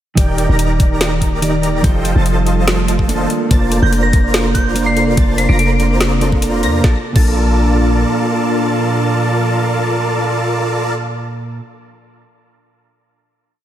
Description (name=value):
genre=future bass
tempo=144 BPM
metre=4/4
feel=half-time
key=Bb major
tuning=A4 = 441 Hz
part: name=clean electric guitar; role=accompaniment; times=0.2-11.7 s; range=Bb2 to A5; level=-19 LUFS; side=right 3 dB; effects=sidechain pumping, tape echo
part: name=ethereal airy pad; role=sustained chords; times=0.9-10.9 s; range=Bb2 to D5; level=-24 LUFS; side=left 2 dB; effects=ensemble chorus, built-in reverb, sidechain pumping
part: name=wide unison pluck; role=arpeggios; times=0.2-11.6 s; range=G6 to Bb6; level=-30 LUFS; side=equal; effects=analog chorus, sidechain pumping, tape echo
part: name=dense compressed supersaw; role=riff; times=0.2-10.9 s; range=Eb4 to Bb5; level=-19 LUFS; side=equal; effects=sidechain pumping, tape echo
part: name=warm 808-style bass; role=bass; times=0.2-8.1 s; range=Eb1 to F2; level=-16 LUFS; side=equal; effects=sidechain pumping
part: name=electronic kick drum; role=drums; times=0.2-7.3 s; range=none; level=-14 LUFS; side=equal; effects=none
part: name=trap drum kit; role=drums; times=0.2-7.3 s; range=crash cymbal, hi-hat, snare drum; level=-21 LUFS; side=left 1 dB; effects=none
part: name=thumb-piano-like synth pluck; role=arpeggios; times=3.5-7.3 s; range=A4 to D5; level=-28 LUFS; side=right 2 dB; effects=chorus, sidechain pumping, tape echo
part: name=soft synth bell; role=melody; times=3.8-5.7 s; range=G6 to D7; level=-20 LUFS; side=equal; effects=chorus, phaser, sidechain pumping, tape echo
room=moderate lush hall reverb, RT60 1.9 s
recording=dreamy mix soaked in reverb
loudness=-12 LUFS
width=side -11 dB against mid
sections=0.2-6.8 drop; 6.8-10.2 final chord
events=drop 0.2-6.8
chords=0.2 Ebmaj7; 1.8 F9; 3.3 Bbmaj9/F; 6.8 Bbmaj7